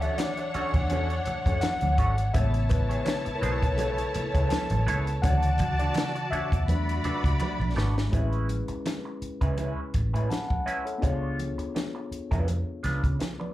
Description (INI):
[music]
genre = lush 1970s-style soul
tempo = 83 BPM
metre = 4/4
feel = swing 54% on 16ths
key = A major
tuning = A4 = 438 Hz
[part]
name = warm symphonic string section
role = second line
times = 0.0-8.1 s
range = D4 to B5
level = -33 LUFS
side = equal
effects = slapback echo
[part]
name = mellow tine electric piano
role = accompaniment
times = 0.0-13.5 s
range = C#3 to B5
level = -32 LUFS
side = left 3 dB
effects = slapback echo
[part]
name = electric guitar through a small old amp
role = riff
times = 0.0-13.4 s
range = G#3 to E5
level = -34 LUFS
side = right 2 dB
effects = wah, slapback echo
[part]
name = vintage muted fingered electric bass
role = bass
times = 0.0-13.2 s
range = G#1 to C#3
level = -27 LUFS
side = equal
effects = none
[part]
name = compact cocktail drum kit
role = drums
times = 0.0-13.4 s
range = hi-hat, kick drum, snare drum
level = -28 LUFS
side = equal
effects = none
[part]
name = congas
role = percussion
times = 0.2-13.5 s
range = none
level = -37 LUFS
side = right 5 dB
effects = none
[part]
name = group handclap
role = percussion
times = 0.2-7.6 s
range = none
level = -44 LUFS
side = left 1 dB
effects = none
[sound]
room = light reverb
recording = live gig heard through the venue's PA, club reverb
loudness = -24 LUFS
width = side -15 dB against mid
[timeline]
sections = 0.0-8.1 A section; 8.1-13.5 B section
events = tine electric piano solo 0.0-8.1; drum fill 7.4-8.1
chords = 0.0 Dmaj7; 2.3 Amaj9; 5.2 Dmaj7; 6.7 E9sus4; 8.1 Amaj9; 11.0 C#7b9